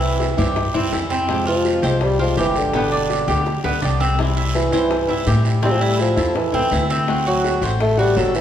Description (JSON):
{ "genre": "latin, Cuban son and guajira", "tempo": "166 BPM", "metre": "4/4", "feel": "straight", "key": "C major", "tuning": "A4 = 440 Hz", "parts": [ { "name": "mellow bassoon", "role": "melody", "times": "0.0-8.4 s", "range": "D3 to A3", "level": "-21 LUFS", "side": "equal", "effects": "none" }, { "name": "flamenco guitar", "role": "accompaniment", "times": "0.0-8.4 s", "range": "B2 to G4", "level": "-24 LUFS", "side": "left 2 dB", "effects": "none" }, { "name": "Cuban tres", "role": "arpeggios", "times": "0.0-8.4 s", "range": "B3 to C5", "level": "-23 LUFS", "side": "right 2 dB", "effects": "none" }, { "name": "upright bass", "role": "bass", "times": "0.0-8.4 s", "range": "G1 to A2", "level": "-21 LUFS", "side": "equal", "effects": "none" }, { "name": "bongos", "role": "percussion", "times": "0.2-8.4 s", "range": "none", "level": "-30 LUFS", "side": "left 5 dB", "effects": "none" }, { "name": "guiro", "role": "percussion", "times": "0.2-8.4 s", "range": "none", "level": "-32 LUFS", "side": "right 4 dB", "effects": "none" } ], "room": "wet recital hall reverb, RT60 1.7 s", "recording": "recorded in a church or concert hall", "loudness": "-16 LUFS", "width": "side -10 dB against mid", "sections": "0.0-4.2 A section; 4.2-8.4 A section", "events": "drum fill 3.1-4.2", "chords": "0.0 C; 1.3 Fmadd9; 2.7 G; 4.2 C; 5.6 Am; 7.1 D7" }